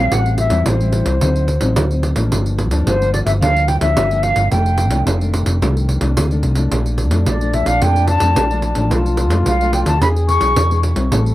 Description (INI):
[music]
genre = samba and choro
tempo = 109 BPM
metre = 4/4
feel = straight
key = unclear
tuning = A4 = 440 Hz
[part]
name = mellow concert flute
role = melody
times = 0.0-10.8 s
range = C5 to C#6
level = -19 LUFS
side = equal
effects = tape echo
[part]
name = nylon-string guitar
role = accompaniment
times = 0.0-11.3 s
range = F2 to G#4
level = -23 LUFS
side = left 3 dB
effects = none
[part]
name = hollow-body short-scale fingered electric bass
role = bass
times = 0.0-11.3 s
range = F1 to F2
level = -16 LUFS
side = equal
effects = none
[part]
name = pandeiro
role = percussion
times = 0.1-11.3 s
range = none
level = -21 LUFS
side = right 2 dB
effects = none
[part]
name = warm trombone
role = second line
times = 6.7-11.3 s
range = D4 to A4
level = -24 LUFS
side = left 2 dB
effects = none
[sound]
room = little or no reverb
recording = dry, gritty hardware recording, transformer saturation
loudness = -13 LUFS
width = side -15 dB against mid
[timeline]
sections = 0.0-11.3 A section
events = none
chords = 0.1 Am7; 1.2 D7b9; 2.3 Gm7; 4.5 F13; 6.7 Bbmaj7; 8.9 Bm7b5; 10.0 E7